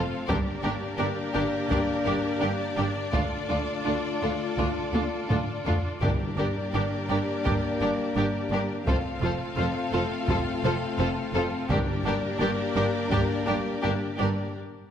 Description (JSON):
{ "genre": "cinematic, epic orchestral film score", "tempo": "84 BPM", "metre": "4/4", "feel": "straight", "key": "G minor", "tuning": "A4 = 439 Hz", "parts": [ { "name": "mellow French horn section", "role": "sustained chords", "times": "0.0-14.5 s", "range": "A3 to F4", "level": "-32 LUFS", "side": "left 4 dB", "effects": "none" }, { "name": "warm studio string section", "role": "sustained chords", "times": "0.0-14.6 s", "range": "C4 to F5", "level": "-32 LUFS", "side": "left 1 dB", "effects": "none" }, { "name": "warm symphonic violin section", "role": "melody", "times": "0.3-14.3 s", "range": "A4 to C5", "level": "-37 LUFS", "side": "left 4 dB", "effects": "none" }, { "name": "warm symphonic violin section", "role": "second line", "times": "0.3-14.3 s", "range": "F4 to A4", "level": "-35 LUFS", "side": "left 3 dB", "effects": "none" }, { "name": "warm symphonic viola section", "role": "accompaniment", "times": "0.3-14.3 s", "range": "D4 to F4", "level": "-34 LUFS", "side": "right 1 dB", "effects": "none" }, { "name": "rich symphonic cello section", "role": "bass", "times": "0.3-14.3 s", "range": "D2 to G2", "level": "-33 LUFS", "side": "right 3 dB", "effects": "none" }, { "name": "warm symphonic double bass section", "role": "bass", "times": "0.3-14.3 s", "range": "F1 to D2", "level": "-33 LUFS", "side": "right 3 dB", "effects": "none" }, { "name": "taiko ensemble", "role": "drums", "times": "0.3-13.8 s", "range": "none", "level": "-31 LUFS", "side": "equal", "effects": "none" }, { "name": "timpani", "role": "percussion", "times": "6.0-7.1, 11.7-12.7 s", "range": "G2", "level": "-34 LUFS", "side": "equal", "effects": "none" } ], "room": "moderate scoring stage reverb, RT60 1.6 s", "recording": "none", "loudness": "-24 LUFS", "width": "side -9 dB against mid", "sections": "0.0-14.9 A section", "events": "drum fill 4.9-6.0; break 14.6-14.9", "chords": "0.3 Gm; 3.1 Dm; 6.0 Gm; 8.9 F; 11.7 Gm" }